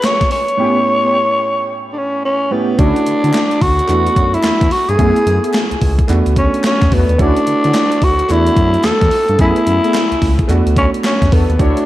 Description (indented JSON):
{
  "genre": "R&B, new jack swing",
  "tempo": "109 BPM",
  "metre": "4/4",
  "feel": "swing 62% on 16ths",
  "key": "unclear",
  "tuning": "A4 = 443 Hz",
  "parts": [
    { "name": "growling tenor saxophone", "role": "melody", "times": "0.0-11.9 s", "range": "B3 to C#5", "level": "-15 LUFS", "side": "equal", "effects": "digital delay" },
    { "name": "warm concert grand piano", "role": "accompaniment", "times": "0.0-11.9 s", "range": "A2 to C#5", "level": "-20 LUFS", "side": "right 3 dB", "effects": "none" },
    { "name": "gated 80s digital drum machine", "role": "drums", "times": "0.0-11.9 s", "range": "hi-hat, kick drum, snare drum", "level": "-17 LUFS", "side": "equal", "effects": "gated reverb, gated reverb snare, overdrive" },
    { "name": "group handclap", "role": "percussion", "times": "0.0-11.2 s", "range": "none", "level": "-33 LUFS", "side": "left 3 dB", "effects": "none" },
    { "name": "mellow synth brass", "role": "stabs", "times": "0.6-11.8 s", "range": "A3 to C#5", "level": "-22 LUFS", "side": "equal", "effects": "chorus, digital delay" },
    { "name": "smooth synth bass", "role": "bass", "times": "2.8-11.7 s", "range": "C#2 to D3", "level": "-16 LUFS", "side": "equal", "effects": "none" }
  ],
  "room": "light reverb, small room ambience",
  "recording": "dark, warm production",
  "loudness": "-11 LUFS",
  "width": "side -15 dB against mid",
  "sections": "0.0-2.8 A section; 2.8-11.9 B section",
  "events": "none",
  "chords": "0.0 C#7; 0.6 A9; 2.8 Dmaj9; 3.9 E9sus4; 5.0 F#m11; 6.1 E9sus4; 7.2 Dmaj9; 8.3 E9sus4; 9.4 F#m11; 10.5 E9sus4",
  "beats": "0.04 | 0.59 1.14 1.69 2.24 | 2.79 3.34 3.89 4.44 | 4.99 5.54 6.09 6.64 | 7.19 7.74 8.29 8.84 | 9.39 9.94 10.49 11.04 | 11.60"
}